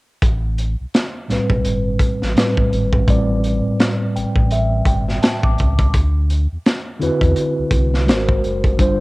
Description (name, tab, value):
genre	R&B, neo-soul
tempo	84 BPM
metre	4/4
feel	swing 61% on 16ths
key	A minor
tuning	A4 = 440 Hz
part	sub bass with octave	bass	0.2-9.0 s	F#1 to E2	-19 LUFS	equal	none
part	crunchy breakbeat drum kit	drums	0.2-9.0 s	hi-hat, kick drum, snare drum	-17 LUFS	equal	cassette tape
part	mellow tine electric piano	accompaniment	1.3-9.0 s	A2 to D6	-19 LUFS	equal	medium stereo tremolo, low-pass filter, cassette tape
room	little or no reverb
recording	home recording on cassette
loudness	-15 LUFS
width	side -22 dB against mid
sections	0.2-9.0 A section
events	filter sweep on tine electric piano 0.2-9.0; tine electric piano fill 3.8-5.9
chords	0.2 Am9; 5.9 D13; 8.1 G#9